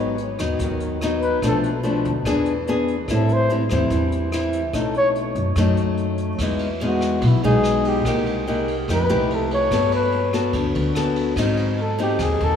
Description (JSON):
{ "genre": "bossa nova", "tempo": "145 BPM", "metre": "4/4", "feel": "straight", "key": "E major", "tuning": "A4 = 440 Hz", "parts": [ { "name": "nylon-string guitar", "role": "accompaniment", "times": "0.0-12.6 s", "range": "G#2 to A4", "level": "-21 LUFS", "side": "left 2 dB", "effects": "none" }, { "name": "upright bass", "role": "bass", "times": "0.0-12.6 s", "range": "G#1 to G#2", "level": "-25 LUFS", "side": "equal", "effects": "none" }, { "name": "vintage brush drum kit", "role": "drums", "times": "0.2-12.5 s", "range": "hi-hat, kick drum, ride cymbal, rim click", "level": "-32 LUFS", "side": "right 1 dB", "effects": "none" }, { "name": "breathy flugelhorn", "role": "melody", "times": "1.2-12.6 s", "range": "E4 to C#5", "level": "-24 LUFS", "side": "left 1 dB", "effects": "none" } ], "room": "wet cathedral reverb, RT60 5.5 s", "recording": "in a vast, echoing space, small room reverb", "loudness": "-18 LUFS", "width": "side -8 dB against mid", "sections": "0.0-6.4 A section; 6.4-12.6 A section", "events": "flugelhorn solo 0.0-6.4, 6.4-12.6", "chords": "0.0 G#m7; 1.4 Bm7b5; 2.3 E7; 3.1 Am7; 4.7 B9; 6.4 Emaj7; 8.1 Cm7; 8.9 F9; 9.7 Gmaj9; 11.4 G#7" }